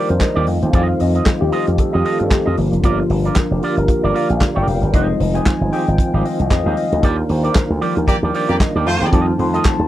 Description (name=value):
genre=disco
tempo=114 BPM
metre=4/4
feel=swing 56% on 16ths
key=unclear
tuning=A4 = 440 Hz
part: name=electric guitar with an envelope filter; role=accompaniment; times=0.0-9.8 s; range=Ab3 to Eb5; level=-24 LUFS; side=right 5 dB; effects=none
part: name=mellow tine electric piano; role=accompaniment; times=0.0-9.9 s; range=F3 to C6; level=-21 LUFS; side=left 4 dB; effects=lush chorus
part: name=percussive tonewheel organ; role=sustained chords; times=0.0-9.9 s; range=D3 to F4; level=-22 LUFS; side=right 2 dB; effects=chorus vibrato, slow rotary speaker
part: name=slap bass with an envelope filter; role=bass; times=0.1-9.9 s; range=F1 to G2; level=-18 LUFS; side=equal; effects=none
part: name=warm soul drum kit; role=drums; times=0.1-9.8 s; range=handclaps, hi-hat, kick drum, snare drum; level=-15 LUFS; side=equal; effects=none
part: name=clear horn section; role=stabs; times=8.1-9.1 s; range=A3 to D5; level=-19 LUFS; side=right 1 dB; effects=none
room=little or no reverb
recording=none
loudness=-14 LUFS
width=side -13 dB against mid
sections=0.0-9.9 A section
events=tine electric piano solo 0.0-9.9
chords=0.5 F7; 2.6 Gm7; 4.9 Fm9; 7.0 Ebmaj9; 8.9 F7